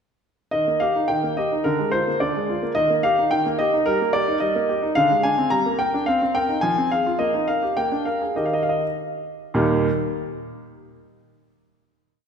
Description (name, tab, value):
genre	classical-period piano sonatina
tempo	99-110 BPM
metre	2/4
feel	straight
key	Eb major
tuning	A4 = 439 Hz
part	clear baby grand piano	solo	0.5-9.9 s	Eb2 to Bb5	-19 LUFS	equal	none
room	wet concert hall reverb, RT60 2.2 s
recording	recorded in a church or concert hall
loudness	-19 LUFS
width	side -6 dB against mid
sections	0.5-9.5 theme; 9.5-10.7 final chord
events	none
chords	0.5 Eb; 1.6 Bb7/D; 2.8 Eb; 3.9 Eb/G; 5.0 Dm7b5; 5.5 Gm; 6.1 Cm7; 6.6 Fm; 7.2 Eb/Bb; 7.8 Bb7; 8.3 Eb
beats	| 0.53 1.09 | 1.65 2.20 | 2.76 3.31 | 3.86 4.40 | 4.95 5.50 | 6.05 6.61 | 7.18 7.75 | 8.34 8.94 | 9.54